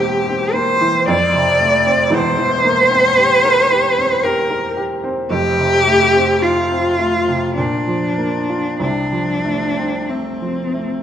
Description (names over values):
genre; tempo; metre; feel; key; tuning
classical, romantic duo for cello and grand piano; 46-58 BPM; 3/4; rubato; F major; A4 = 443 Hz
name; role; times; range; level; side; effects
rich cello; melody; 0.0-11.0 s; C4 to D5; -15 LUFS; equal; none
clear baby grand piano; accompaniment; 0.0-11.0 s; E1 to Bb4; -19 LUFS; right 2 dB; none
room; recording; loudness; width
wet scoring stage reverb, RT60 1.7 s; none; -13 LUFS; side -9 dB against mid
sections
0.0-11.0 A section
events
none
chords
0.0 C7/E; 1.1 F; 2.1 C7/E; 5.3 F; 7.6 Bb; 8.8 F/C